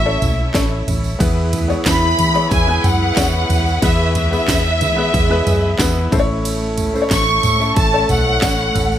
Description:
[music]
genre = piano-driven pop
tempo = 91 BPM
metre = 4/4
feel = straight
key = E major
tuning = A4 = 440 Hz
[part]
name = warm studio violin section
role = melody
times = 0.0-9.0 s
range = E5 to C#6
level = -18 LUFS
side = equal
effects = none
[part]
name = mellow French horn section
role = second line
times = 0.0-9.0 s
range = E3 to A4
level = -24 LUFS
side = right 2 dB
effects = tape echo
[part]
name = warm concert grand piano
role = accompaniment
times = 0.0-9.0 s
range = A2 to E5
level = -22 LUFS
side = left 3 dB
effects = none
[part]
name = rich studio string section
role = sustained chords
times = 0.0-9.0 s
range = E3 to B4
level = -28 LUFS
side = equal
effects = none
[part]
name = vintage muted fingered electric bass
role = bass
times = 0.0-9.0 s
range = A1 to E3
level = -19 LUFS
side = equal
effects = none
[part]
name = house drum kit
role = drums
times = 0.2-8.9 s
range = handclaps, kick drum, ride cymbal, snare drum, toms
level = -20 LUFS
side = equal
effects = none
[part]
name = tambourine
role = percussion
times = 0.2-9.0 s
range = none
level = -31 LUFS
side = right 9 dB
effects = none
[sound]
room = light reverb, studio ambience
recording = none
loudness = -14 LUFS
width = side -10 dB against mid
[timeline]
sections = 0.0-9.0 A section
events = none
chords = 0.0 A; 1.2 E; 6.1 A

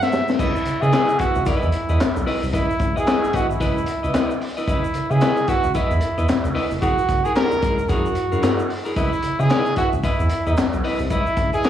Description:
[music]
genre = funk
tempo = 112 BPM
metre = 4/4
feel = swing 60% on 16ths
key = C# dorian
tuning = A4 = 440 Hz
[part]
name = warm trumpet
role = melody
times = 0.0-11.7 s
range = E4 to E5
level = -22 LUFS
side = right 2 dB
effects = slapback echo
[part]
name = crunchy breakbeat drum kit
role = drums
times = 0.0-11.7 s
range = crash cymbal, handclaps, hi-hat, kick drum, snare drum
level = -23 LUFS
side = left 1 dB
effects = none
[part]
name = egg shaker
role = percussion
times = 0.0-11.7 s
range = none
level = -50 LUFS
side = left 4 dB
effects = none
[part]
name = clean electric guitar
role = accompaniment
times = 0.4-11.7 s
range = E4 to E5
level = -26 LUFS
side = left 4 dB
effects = tremolo, slapback echo
[part]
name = round analog bass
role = bass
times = 0.4-11.5 s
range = E#1 to C#3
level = -22 LUFS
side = equal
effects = none
[sound]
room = light reverb, small room ambience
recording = live gig heard through the venue's PA, club reverb, vinyl crackle, small room reverb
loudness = -18 LUFS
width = side -10 dB against mid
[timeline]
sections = 0.4-11.7 A section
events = break 0.0-0.4; drum fill 0.0-0.4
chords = 0.4 C#m9; 6.8 F#9; 9.0 C#m9

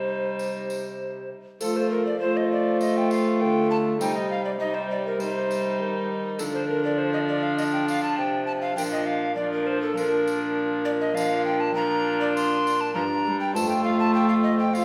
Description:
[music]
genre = classical, renaissance-style consort dance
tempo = 100 BPM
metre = 4/4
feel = straight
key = unclear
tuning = A4 = 440 Hz
[part]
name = mellow hollow tenor recorder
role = melody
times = 0.0-14.8 s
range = A4 to C6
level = -30 LUFS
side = equal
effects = none
[part]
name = warm viola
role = second line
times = 0.0-14.8 s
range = D4 to F4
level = -31 LUFS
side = equal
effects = none
[part]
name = warm viola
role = accompaniment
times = 0.0-14.8 s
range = F3 to A3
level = -30 LUFS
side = equal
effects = none
[part]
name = mellow bassoon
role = bass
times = 0.0-14.8 s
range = F2 to F3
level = -32 LUFS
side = equal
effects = none
[part]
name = tambourine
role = percussion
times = 0.4-14.8 s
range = none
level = -44 LUFS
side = equal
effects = none
[sound]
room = wet recital hall reverb, RT60 1.3 s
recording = heard from further back in the room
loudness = -24 LUFS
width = mono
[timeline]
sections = 0.0-1.6 A section; 1.6-14.8 A section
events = none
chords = 0.0 Cm; 1.6 F; 4.0 Cm; 6.4 Dm; 8.8 Bb; 13.6 F

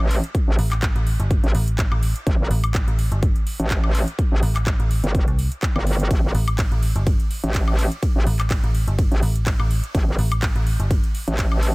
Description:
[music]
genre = bass house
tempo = 125 BPM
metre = 4/4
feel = swing 54% on 16ths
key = A minor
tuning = A4 = 440 Hz
[part]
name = metallic wobble bass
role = bass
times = 0.0-11.7 s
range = G1 to A1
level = -21 LUFS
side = equal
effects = chorus, tube saturation, sidechain pumping
[part]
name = house drum kit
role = drums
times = 0.0-11.7 s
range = handclaps, hi-hat, ride cymbal, woodblock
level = -30 LUFS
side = equal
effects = none
[part]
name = electronic kick drum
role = drums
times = 0.3-11.5 s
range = none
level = -21 LUFS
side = equal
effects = none
[part]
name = metallic FM bass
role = bass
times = 0.6-11.0 s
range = G1 to C2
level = -21 LUFS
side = equal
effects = sidechain pumping
[sound]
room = little or no reverb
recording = none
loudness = -18 LUFS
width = side -25 dB against mid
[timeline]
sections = 0.0-11.7 A section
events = none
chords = none

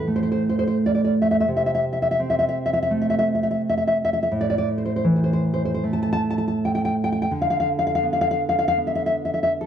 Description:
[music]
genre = romantic piece for solo classical guitar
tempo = 73-87 BPM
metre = 4/4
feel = rubato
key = A minor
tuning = A4 = 439 Hz
[part]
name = nylon-string guitar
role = solo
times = 0.0-9.7 s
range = A2 to A5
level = -19 LUFS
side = equal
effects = none
[sound]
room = moderate recital hall reverb, RT60 1.7 s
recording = dark, warm production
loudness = -19 LUFS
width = side -9 dB against mid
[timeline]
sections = 0.0-9.7 A section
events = none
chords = 0.0 A5; 1.5 Am/C; 4.3 A5; 7.3 Dm69

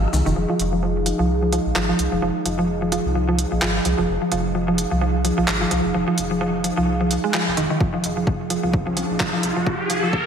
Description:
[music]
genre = minimal techno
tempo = 129 BPM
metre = 4/4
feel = swing 57% on 16ths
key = F minor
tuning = A4 = 441 Hz
[part]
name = round analog bass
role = bass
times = 0.0-10.3 s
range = F1 to C2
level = -25 LUFS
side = equal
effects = sidechain pumping
[part]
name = deep dark ambient pad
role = texture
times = 0.0-10.3 s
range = Eb4 to F5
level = -27 LUFS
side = equal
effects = chorus, built-in reverb, sidechain pumping
[part]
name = mallet-like synth pluck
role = riff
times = 0.1-10.1 s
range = Eb3 to Ab3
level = -22 LUFS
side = right 1 dB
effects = chorus, sidechain pumping, ping-pong delay
[part]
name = garage drum kit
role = drums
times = 0.6-10.0 s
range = handclaps, hi-hat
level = -26 LUFS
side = right 1 dB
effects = none
[part]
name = electronic kick drum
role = drums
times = 7.8-10.2 s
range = none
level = -22 LUFS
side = equal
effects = none
[part]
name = riser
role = sound effects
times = 8.7-10.3 s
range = none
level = -26 LUFS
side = left 1 dB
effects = none
[sound]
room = wet lush hall reverb, RT60 2.2 s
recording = dreamy mix soaked in reverb, high-pass filter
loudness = -18 LUFS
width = side -7 dB against mid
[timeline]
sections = 0.4-10.3 A section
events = build-up 0.4-10.3; filter sweep on synth arpeggio sound 0.4-10.3; riser 8.7-10.3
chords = 0.4 Fm7

